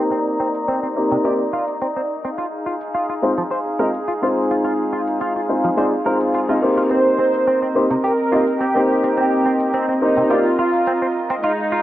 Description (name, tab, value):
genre	nu-disco, nu disco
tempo	106 BPM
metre	4/4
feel	straight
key	C minor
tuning	A4 = 440 Hz
part	clear baby grand piano	accompaniment	0.0-10.4 s	Ab3 to Eb5	-19 LUFS	left 1 dB	low-pass filter, tape echo
part	warm chamber string section	sustained chords	0.0-11.8 s	Ab3 to Bb5	-23 LUFS	equal	low-pass filter
part	direct-recorded clean electric guitar	riff	0.0-11.8 s	C3 to C5	-25 LUFS	right 1 dB	analog chorus, low-pass filter
part	electronic hi-hat	drums	0.1-11.6 s	none	-53 LUFS	equal	none
part	reverse cymbal	sound effects	6.0-6.9 s	none	-37 LUFS	left 4 dB	none
part	warm studio violin section	melody	6.9-11.8 s	Eb4 to C5	-19 LUFS	right 1 dB	tape echo
room	moderate echo chamber reverb, RT60 1.4 s, studio reverb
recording	dry, gritty hardware recording, cassette tape, low-pass filter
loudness	-16 LUFS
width	side -14 dB against mid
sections	0.0-11.8 A section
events	filter sweep on clean electric guitar 0.0-11.8; filter sweep on grand piano 0.0-11.8; filter sweep on string section 0.0-11.8; filter sweep 0.0-11.8; reverse cymbal 6.0-6.9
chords	0.0 Cm7; 2.4 Fm7; 6.9 Cm7